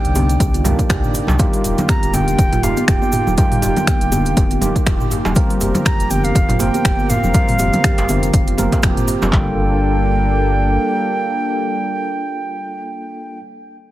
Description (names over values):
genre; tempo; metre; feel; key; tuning
afro house; 121 BPM; 4/4; swing 56% on 16ths; G minor; A4 = 440 Hz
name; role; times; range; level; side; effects
reedy concert flute; melody; 0.0-13.4 s; F5 to Bb5; -23 LUFS; right 3 dB; digital delay
warm analog pad; sustained chords; 0.0-13.4 s; C3 to D5; -25 LUFS; left 2 dB; chorus, sidechain pumping
handpan; arpeggios; 0.0-9.6 s; D3 to G4; -24 LUFS; right 2 dB; sidechain pumping, digital delay
overdriven tine electric piano; stabs; 0.0-13.4 s; Bb3 to Bb4; -26 LUFS; right 1 dB; fast tremolo, sidechain pumping, digital delay
warm sub bass; bass; 0.0-10.8 s; Eb1 to C2; -20 LUFS; equal; tube saturation, sidechain pumping
afro-pop drum kit; drums; 0.0-9.2 s; finger snaps, hi-hat, toms; -22 LUFS; equal; small room ambience
cabasa; percussion; 0.0-9.3 s; none; -31 LUFS; right 2 dB; none
congas; percussion; 0.2-9.3 s; none; -25 LUFS; left 1 dB; none
djembe; percussion; 0.2-9.3 s; none; -27 LUFS; right 1 dB; none
deep house drum kit; drums; 0.4-9.5 s; handclaps, kick drum; -17 LUFS; equal; overdrive, small room ambience
room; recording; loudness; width
small room ambience; heavily compressed radio sound; -14 LUFS; side -15 dB against mid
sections
0.0-9.3 A section; 9.3-13.3 B section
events
drop 0.0-9.3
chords
0.0 Cm7; 1.4 Ebadd9; 5.4 Fsus4; 9.3 Gm7